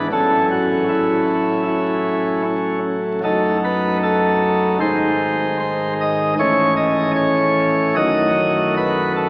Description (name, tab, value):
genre	classical, chorale-style piece for pipe organ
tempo	76 BPM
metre	4/4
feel	rubato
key	unclear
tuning	A4 = 440 Hz
part	chamber organ, principal chorus	solo	0.0-9.3 s	F#1 to D#5	-18 LUFS	equal	none
room	wet cathedral reverb, RT60 4.6 s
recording	heard from further back in the room, vinyl crackle, AM radio sound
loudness	-18 LUFS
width	mono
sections	0.0-9.3 A section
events	none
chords	0.1 A6; 3.2 D#dim/F#; 4.8 G#; 6.4 A; 8.0 D#dim/F#